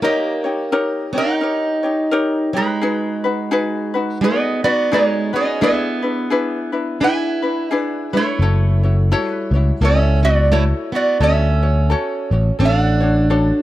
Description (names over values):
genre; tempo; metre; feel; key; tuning
Hawaiian; 86 BPM; 4/4; swing 59% on 8ths; F# minor; A4 = 442 Hz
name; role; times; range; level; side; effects
lap resonator guitar; melody; 0.0-13.6 s; D#4 to G#5; -21 LUFS; right 2 dB; none
picked plugged-in steel-string acoustic guitar; second line; 0.0-13.6 s; G#3 to E4; -22 LUFS; right 2 dB; none
ukulele; accompaniment; 0.0-13.6 s; D4 to C#5; -21 LUFS; left 3 dB; none
picked electric bass; bass; 8.4-13.5 s; F#1 to D2; -15 LUFS; equal; none
room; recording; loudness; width
small room ambience; dry, close 1970s-style studio recording; -15 LUFS; side -14 dB against mid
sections
0.0-13.6 A section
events
none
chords
0.0 D#7; 2.8 G#m7; 5.6 E7; 8.4 F#m7; 11.2 Dmaj7